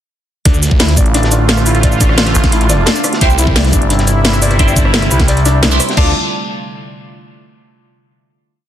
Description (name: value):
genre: dark technical drum and bass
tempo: 174 BPM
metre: 4/4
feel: straight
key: D minor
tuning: A4 = 440 Hz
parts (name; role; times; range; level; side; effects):
- sweeping resonant pad; sustained chords; 0.5-6.1 s; C3 to F4; -19 LUFS; right 1 dB; chorus, sidechain pumping
- felt-muted upright piano; arpeggios; 0.5-6.1 s; D4 to D5; -20 LUFS; left 4 dB; sidechain pumping, tape echo
- snarling distorted saw bass; bass; 0.5-3.7, 6.0-6.1 s; A1 to D2; -13 LUFS; equal; distortion, sidechain pumping
- crunchy breakbeat drum kit; drums; 0.5-6.0 s; hi-hat, snare drum; -26 LUFS; equal; none
- drum and bass drum kit; drums; 0.5-6.0 s; cabasa, crash cymbal, hi-hat, rim click, snare drum; -16 LUFS; equal; none
- electronic kick drum; drums; 0.5-6.0 s; none; -13 LUFS; equal; none
- growling FM bass; bass; 1.0-5.8 s; G1 to C2; -14 LUFS; equal; none
- band-passed chord stab; stabs; 3.2-6.1 s; E4 to D5; -20 LUFS; right 2 dB; phaser, vintage 12-bit sampler grit, tape echo
room: light reverb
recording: dense, heavily limited modern master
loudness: -9 LUFS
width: side -11 dB against mid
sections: 0.5-6.0 drop; 6.0-7.4 final chord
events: drop 0.5-6.0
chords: 0.5 Dm; 3.2 C; 6.0 Dm